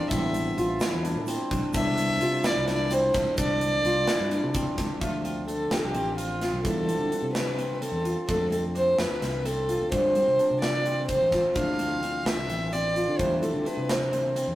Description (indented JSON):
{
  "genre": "progressive instrumental, band music in an uneven meter",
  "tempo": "257 BPM (eighths)",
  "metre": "7/8",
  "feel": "straight",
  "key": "D dorian",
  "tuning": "A4 = 445 Hz",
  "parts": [
    { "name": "warm violin", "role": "melody", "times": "0.0-14.6 s", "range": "F4 to F5", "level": "-26 LUFS", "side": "equal", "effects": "none" },
    { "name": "vintage hollow-body jazz guitar", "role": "accompaniment", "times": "0.0-14.6 s", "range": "B2 to E5", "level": "-37 LUFS", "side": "right 1 dB", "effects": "none" },
    { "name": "qanun", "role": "arpeggios", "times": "0.0-14.6 s", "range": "C4 to F4", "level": "-31 LUFS", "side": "equal", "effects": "none" },
    { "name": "fretless electric bass", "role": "bass", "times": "0.1-14.6 s", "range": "A1 to G3", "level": "-32 LUFS", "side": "equal", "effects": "none" },
    { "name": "tight metal drum kit", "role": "drums", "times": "0.1-14.5 s", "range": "hi-hat, kick drum, snare drum", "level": "-32 LUFS", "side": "right 1 dB", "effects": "none" },
    { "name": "tube shaker", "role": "percussion", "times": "0.1-4.8 s", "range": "none", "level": "-46 LUFS", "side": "right 4 dB", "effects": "none" }
  ],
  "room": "moderate stone room reverb, RT60 1.2 s",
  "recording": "rough rehearsal-room recording",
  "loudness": "-23 LUFS",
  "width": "side -14 dB against mid",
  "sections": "0.0-5.0 A section; 5.0-14.6 B section",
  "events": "none",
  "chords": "0.1 Am7; 1.7 Cmaj9; 5.0 Dm7; 6.6 Am7/E; 8.3 F; 9.9 Gsus4; 11.6 Dm7; 13.2 Am7/E",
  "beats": "| 0.11 0.34 0.57 0.81 1.04 1.28 1.51 | 1.74 1.98 2.21 2.44 2.68 2.91 3.14 | 3.38 3.61 3.85 4.08 4.31 4.54 4.78 | 5.01 5.25 5.48 5.71 5.95 6.18 6.41 | 6.65 6.88 7.12 7.35 7.58 7.82 8.05 | 8.28 8.52 8.75 8.98 9.22 9.45 9.69 | 9.92 10.15 10.39 10.62 10.85 11.09 11.32 | 11.55 11.79 12.02 12.26 12.49 12.72 12.96 | 13.19 13.42 13.66 13.89 14.12 14.36"
}